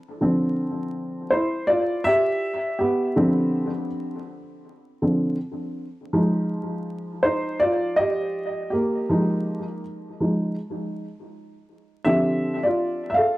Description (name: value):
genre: hip hop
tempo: 81 BPM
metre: 4/4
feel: swing 60% on 16ths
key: unclear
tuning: A4 = 440 Hz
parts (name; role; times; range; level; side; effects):
- dark upright piano; solo; 0.2-13.4 s; D3 to F5; -21 LUFS; equal; analog delay
room: wet studio reverb, RT60 0.6 s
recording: dark, warm production, vinyl crackle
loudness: -21 LUFS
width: side -18 dB against mid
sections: 0.2-13.4 A section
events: upright piano solo 0.2-13.4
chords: 0.2 Dm11; 6.1 Fm11; 12.1 Dm11